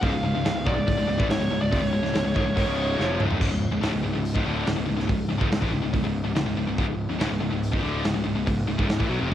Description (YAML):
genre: heavy metal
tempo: 142 BPM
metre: 4/4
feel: straight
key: unclear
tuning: A4 = 439 Hz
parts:
  - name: high-gain lead guitar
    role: melody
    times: 0.0-3.2 s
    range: C#5 to E#5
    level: -29 LUFS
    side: right 1 dB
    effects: distortion, tape echo
  - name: heavy high-gain guitar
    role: riff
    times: 0.0-9.3 s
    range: C#2 to F#3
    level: -28 LUFS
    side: left 7 dB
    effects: distortion, cassette tape
  - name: scooped high-gain guitar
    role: riff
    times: 0.0-9.3 s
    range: C#2 to F#3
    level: -30 LUFS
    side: right 8 dB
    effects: distortion, cassette tape
  - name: fuzz picked electric bass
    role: bass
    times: 0.0-9.3 s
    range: C#1 to B1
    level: -29 LUFS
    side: right 1 dB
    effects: overdrive
  - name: modern studio drum kit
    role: drums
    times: 0.0-9.3 s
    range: crash cymbal, hi-hat, kick drum, snare drum, toms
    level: -28 LUFS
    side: right 1 dB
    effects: cassette tape
room: small room ambience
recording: home recording on cassette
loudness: -22 LUFS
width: side -11 dB against mid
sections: 0.0-3.4 A section; 3.4-9.3 B section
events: drum fill 3.0-3.4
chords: 0.0 C#; 3.4 C#5